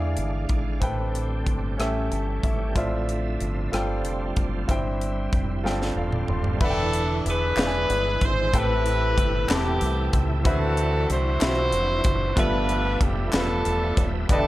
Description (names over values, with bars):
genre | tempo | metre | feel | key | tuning
slow gospel | 62 BPM (dotted quarters) | 6/8 | straight | unclear | A4 = 440 Hz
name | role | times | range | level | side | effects
clear concert grand piano | accompaniment | 0.0-14.5 s | G2 to C6 | -29 LUFS | equal | none
bright tonewheel organ | sustained chords | 0.0-14.5 s | D3 to F5 | -32 LUFS | right 3 dB | slow rotary speaker, overdrive, chorus vibrato
deep dub fingered electric bass | bass | 0.0-14.5 s | Eb1 to E2 | -27 LUFS | equal | none
crisp fusion drum kit | drums | 0.2-14.4 s | crash cymbal, hi-hat, kick drum, rim click, snare drum, toms | -26 LUFS | equal | none
warm horn section | melody | 6.6-14.5 s | B3 to C5 | -26 LUFS | equal | none
group handclap | percussion | 7.6-13.6 s | none | -34 LUFS | left 2 dB | none
room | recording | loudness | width
small room reverb | none | -21 LUFS | side -16 dB against mid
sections
0.0-6.6 A section; 6.6-14.5 B section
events
grand piano fill 1.8-2.8, 5.7-6.6; drum fill 5.7-6.6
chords
0.0 E7b9; 0.8 Am9; 1.8 A7; 2.8 Dm9/A; 3.7 G9sus4; 4.7 C/G; 5.7 G9sus4; 6.6 Em7; 8.5 Am9; 10.5 D13; 12.4 G13